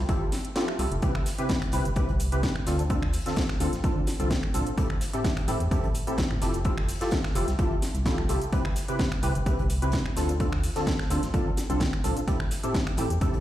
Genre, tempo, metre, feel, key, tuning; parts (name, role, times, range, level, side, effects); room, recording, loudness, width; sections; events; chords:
piano house; 128 BPM; 4/4; swing 53% on 16ths; A4 = 440 Hz
organ-like FM bass; bass; 0.0-13.4 s; F1 to A2; -29 LUFS; equal; tube saturation, sidechain pumping
percussive organ stab; riff; 0.1-13.4 s; A2 to B4; -30 LUFS; equal; ensemble chorus, sidechain pumping, digital delay
big rock drum kit; drums; 0.1-13.4 s; hi-hat, snare drum; -44 LUFS; left 2 dB; sidechain pumping on hats, high-pass filter on hats, high-pass filter on snare, high-pass filter on room
electronic kick drum; drums; 0.1-13.3 s; -28 LUFS; equal; overdrive
house drum kit; drums; 0.1-13.3 s; finger snaps, hi-hat, shaker, snare drum; -33 LUFS; equal; overdrive
light reverb, digital ambience; played on a big sound system in a bare room, large studio reverb; -24 LUFS; side -13 dB against mid
0.0-1.0 A section; 1.0-13.4 B section
kick drops out 0.6-1.0; drop 1.0-13.4
0.0 Fmaj9; 1.0 Cmaj7; 2.7 Dm7; 4.8 Fmaj9; 8.5 Cmaj7; 10.2 Dm7; 12.3 Fmaj9 (rootless)